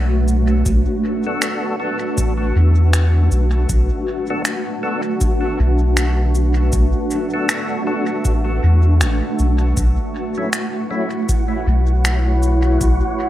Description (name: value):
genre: ambient dub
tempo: 79 BPM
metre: 4/4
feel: swing 60% on 16ths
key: B minor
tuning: A4 = 440 Hz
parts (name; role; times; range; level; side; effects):
- granular cloud pad; sustained chords; 0.0-13.3 s; A3 to F#5; -21 LUFS; equal; built-in reverb
- soft dub sub bass; bass; 0.0-13.0 s; A1 to E2; -15 LUFS; equal; none
- electronic cabasa and finger snaps; drums; 0.3-13.0 s; none; -24 LUFS; equal; overdrive, dub echo
- electronic kick drum; drums; 0.7-13.0 s; none; -21 LUFS; equal; overdrive
- percussive tonewheel organ; stabs; 1.3-11.1 s; F#3 to A4; -27 LUFS; left 1 dB; overdrive, chorus vibrato, slow rotary speaker, dub echo
- wind-like tuned noise texture; texture; 10.6-13.3 s; F#4 to F#5; -27 LUFS; right 1 dB; built-in reverb
room: light reverb, digital ambience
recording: none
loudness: -15 LUFS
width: side -14 dB against mid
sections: 0.0-13.3 A section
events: none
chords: 0.0 Bm7; 9.8 F#m7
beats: | 0.66 1.42 2.18 2.94 | 3.70 4.46 5.22 5.98 | 6.74 7.50 8.25 9.01 | 9.77 10.53 11.29 12.05 | 12.81